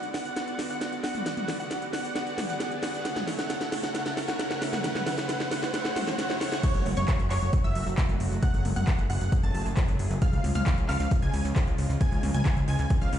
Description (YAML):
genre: uplifting trance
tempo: 134 BPM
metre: 4/4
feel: straight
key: F# minor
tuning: A4 = 440 Hz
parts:
  - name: dense compressed supersaw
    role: melody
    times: 0.0-13.2 s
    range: C#5 to A5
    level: -35 LUFS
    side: equal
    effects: vintage 12-bit sampler grit, sidechain pumping, low-pass filter, dub echo
  - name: techno drum kit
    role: drums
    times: 0.0-13.2 s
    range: crash cymbal, handclaps, hi-hat, snare drum, toms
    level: -32 LUFS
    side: equal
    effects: overdrive, studio reverb
  - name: tube shaker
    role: percussion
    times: 0.0-13.1 s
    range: none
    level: -50 LUFS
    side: right 5 dB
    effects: none
  - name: riser and swell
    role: sound effects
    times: 0.0-6.6 s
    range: none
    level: -38 LUFS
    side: right 1 dB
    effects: none
  - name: lush unison pad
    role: sustained chords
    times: 0.1-13.2 s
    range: C#3 to D5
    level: -35 LUFS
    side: equal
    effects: chorus, sidechain pumping
  - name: wide unison pluck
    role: second line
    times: 6.6-13.2 s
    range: C#6 to A6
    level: -40 LUFS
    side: equal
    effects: sidechain pumping, dub echo
  - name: electronic kick drum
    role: drums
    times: 6.6-13.0 s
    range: none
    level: -25 LUFS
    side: equal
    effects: overdrive, studio reverb
  - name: plucky analog bass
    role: bass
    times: 6.7-13.2 s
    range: F#1 to C#2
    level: -28 LUFS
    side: equal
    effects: sidechain pumping
room: light reverb, digital ambience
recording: played on a big sound system in a bare room, stone room reverb, nothing above 10.6 kHz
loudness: -25 LUFS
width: side -10 dB against mid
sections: 0.0-6.6 A section; 6.6-13.2 B section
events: build-up 0.0-6.6; drum fill 0.0-6.6; riser 0.0-6.6; swell 5.7-6.6; drop 6.6-13.2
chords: 0.0 Bm; 3.1 A; 6.6 F#m; 10.2 C#